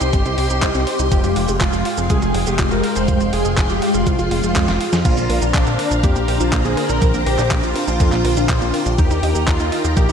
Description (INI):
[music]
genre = italo disco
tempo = 122 BPM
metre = 4/4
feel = straight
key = unclear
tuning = A4 = 440 Hz
[part]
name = wide unison lead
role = melody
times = 0.0-10.1 s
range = D4 to C5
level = -23 LUFS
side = equal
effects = analog delay
[part]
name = string machine, full ensemble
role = sustained chords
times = 0.0-10.1 s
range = Ab3 to C6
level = -21 LUFS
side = left 1 dB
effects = phaser, ensemble chorus
[part]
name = wide unison pluck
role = arpeggios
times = 0.0-10.1 s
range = Bb3 to F5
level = -28 LUFS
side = right 2 dB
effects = vintage 12-bit sampler grit, analog delay
[part]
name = fat analog bass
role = bass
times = 0.0-10.1 s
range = F1 to F2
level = -21 LUFS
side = equal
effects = tube saturation
[part]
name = clean 12-bit digital drum machine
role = drums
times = 0.0-10.1 s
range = cabasa, crash cymbal, handclaps, hi-hat, snare drum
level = -25 LUFS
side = equal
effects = none
[part]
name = electronic kick drum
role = drums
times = 0.1-10.1 s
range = none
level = -18 LUFS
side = equal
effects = none
[sound]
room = moderate lush hall reverb, RT60 1.9 s, digital ambience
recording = dreamy mix soaked in reverb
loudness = -15 LUFS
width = side -7 dB against mid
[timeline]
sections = 0.0-5.0 A section; 5.0-10.1 B section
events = drum fill 4.6-5.0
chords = 0.0 Cm; 1.1 Fmadd9; 5.0 Bbadd9; 9.0 Eb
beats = 0.13 0.62 | 1.12 1.61 2.10 2.59 | 3.08 3.58 4.07 4.56 | 5.05 5.54 6.03 6.53 | 7.02 7.51 8.00 8.49 | 8.98 9.48 9.97